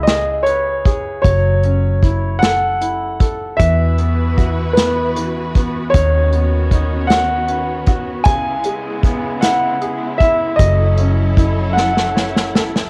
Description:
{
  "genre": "six-eight pop ballad",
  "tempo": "51 BPM (dotted quarters)",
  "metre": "6/8",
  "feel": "straight",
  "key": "unclear",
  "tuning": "A4 = 438 Hz",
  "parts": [
    { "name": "warm grand piano", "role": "melody", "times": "0.0-12.9 s", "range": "B4 to G#5", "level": "-21 LUFS", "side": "equal", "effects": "cassette tape, tape echo" },
    { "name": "bright upright piano", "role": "accompaniment", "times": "0.0-12.9 s", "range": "C#3 to C#5", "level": "-27 LUFS", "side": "equal", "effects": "cassette tape" },
    { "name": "vintage muted fingered electric bass", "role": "bass", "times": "0.0-12.9 s", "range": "F#1 to E2", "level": "-20 LUFS", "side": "equal", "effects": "none" },
    { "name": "unplugged drum kit", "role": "drums", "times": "0.1-12.9 s", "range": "hi-hat, kick drum, snare drum", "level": "-18 LUFS", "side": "equal", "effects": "cassette tape" },
    { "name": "clear studio string section", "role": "sustained chords", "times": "3.6-12.9 s", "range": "C#3 to B4", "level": "-27 LUFS", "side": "equal", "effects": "cassette tape" }
  ],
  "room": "light reverb, small room ambience",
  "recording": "home recording on cassette",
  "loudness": "-16 LUFS",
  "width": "mono",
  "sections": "0.0-12.9 A section",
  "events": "drum fill 11.8-12.9",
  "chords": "0.0 C#m7; 1.2 F#m7; 3.6 Esus2; 5.9 Badd9/D#; 8.3 C#m7; 10.6 F#m7",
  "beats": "0.07 | 1.24 2.42 | 3.60 4.77 | 5.94 7.11 | 8.27 9.43 | 10.60 11.77"
}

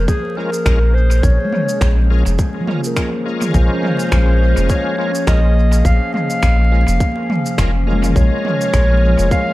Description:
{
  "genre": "ambient dub",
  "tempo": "104 BPM",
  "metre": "4/4",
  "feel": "swing 57% on 16ths",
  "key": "Bb minor",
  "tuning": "A4 = 440 Hz",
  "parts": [
    { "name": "dark clarinet", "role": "melody", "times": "0.0-9.5 s", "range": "Ab4 to F5", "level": "-22 LUFS", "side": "equal", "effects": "dub echo" },
    { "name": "warbly tape-like pad", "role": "sustained chords", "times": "0.0-9.5 s", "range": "F3 to Ab4", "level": "-23 LUFS", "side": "left 2 dB", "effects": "chorus, built-in reverb" },
    { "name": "soft dub sub bass", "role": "bass", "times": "0.0-9.3 s", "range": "F1 to Bb1", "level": "-13 LUFS", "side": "equal", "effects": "none" },
    { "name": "electronic kick drum", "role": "drums", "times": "0.1-9.4 s", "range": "none", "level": "-19 LUFS", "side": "equal", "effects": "studio reverb" },
    { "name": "organic electronic drum kit", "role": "drums", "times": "0.1-9.4 s", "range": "finger snaps, shaker, toms", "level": "-25 LUFS", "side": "right 1 dB", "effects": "overdrive, studio reverb, dub echo" },
    { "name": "bright tonewheel organ", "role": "stabs", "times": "0.4-9.5 s", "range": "Ab3 to Bb4", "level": "-26 LUFS", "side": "left 2 dB", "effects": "overdrive, chorus vibrato, slow rotary speaker, dub echo" },
    { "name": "handpan", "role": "arpeggios", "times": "1.4-9.5 s", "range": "F3 to F5", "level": "-26 LUFS", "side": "equal", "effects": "dub echo" }
  ],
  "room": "light reverb, digital ambience",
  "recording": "echo-heavy mix, vinyl crackle",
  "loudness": "-13 LUFS",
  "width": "side -17 dB against mid",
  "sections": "0.0-9.5 A section",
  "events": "none",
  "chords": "0.0 Bbm7",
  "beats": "0.08 0.66 | 1.24 1.81 2.39 2.97 | 3.54 4.12 4.70 5.28 | 5.85 6.43 7.01 7.58 | 8.16 8.74 9.31"
}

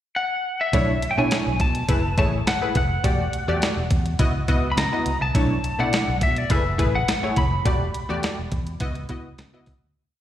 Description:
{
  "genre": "early-eighties boogie funk",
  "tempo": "104 BPM",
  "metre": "4/4",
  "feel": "straight",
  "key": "B dorian",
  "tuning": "A4 = 440 Hz",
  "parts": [
    { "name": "lightly driven lead guitar", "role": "melody", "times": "0.2-9.6 s", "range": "D5 to B5", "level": "-26 LUFS", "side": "left 2 dB", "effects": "slapback echo" },
    { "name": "funky polysynth comp", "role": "accompaniment", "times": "0.7-9.7 s", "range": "A3 to D#5", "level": "-26 LUFS", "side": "left 1 dB", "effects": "chorus, slapback echo" },
    { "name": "vintage muted fingered electric bass", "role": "bass", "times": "0.7-9.9 s", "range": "E1 to C#3", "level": "-25 LUFS", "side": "equal", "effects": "none" },
    { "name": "crisp 8-bit digital drum machine", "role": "drums", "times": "0.7-9.8 s", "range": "hi-hat, kick drum, snare drum", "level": "-23 LUFS", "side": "equal", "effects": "none" }
  ],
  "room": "digital ambience",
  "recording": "live gig heard through the venue's PA, recital hall reverb",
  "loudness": "-20 LUFS",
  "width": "side -11 dB against mid",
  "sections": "0.0-0.7 pickup bar; 0.7-10.0 verse",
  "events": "fade-out 7.7-10.0",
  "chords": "0.0 N.C.; 0.7 Bm11; 1.9 F#m11; 3.0 Em11; 4.2 C#m11; 5.3 Bm11; 6.5 F#m11; 7.7 Em11; 8.8 C#m11",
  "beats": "0.15 | 0.73 1.31 1.89 2.46 | 3.04 3.62 4.19 4.77 | 5.35 5.92 6.50 7.08 | 7.66 8.23 8.81 9.39"
}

